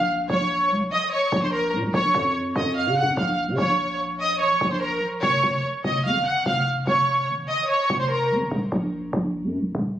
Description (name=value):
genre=hip hop, drill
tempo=146 BPM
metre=4/4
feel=half-time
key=Bb minor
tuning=A4 = 443 Hz
part: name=warm symphonic violin section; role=melody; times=0.0-8.3 s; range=Bb4 to Gb6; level=-21 LUFS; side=equal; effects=low-pass filter, tape echo
part: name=growling 808-style bass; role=bass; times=0.0-10.0 s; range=Eb1 to Db3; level=-26 LUFS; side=equal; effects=none
room=light reverb, small room ambience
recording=recorded on a phone in the room, club reverb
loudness=-20 LUFS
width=side -11 dB against mid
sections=0.0-10.0 A section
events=break 8.5-10.0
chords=0.0 Bbm; 5.2 F7(no3); 8.5 Eb5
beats=| 0.30 0.71 1.12 1.53 | 1.94 2.35 2.76 3.17 | 3.58 4.00 4.41 4.82 | 5.23 5.64 6.05 6.46 | 6.87 7.28 7.69 8.10 | 8.52 8.93 9.34 9.75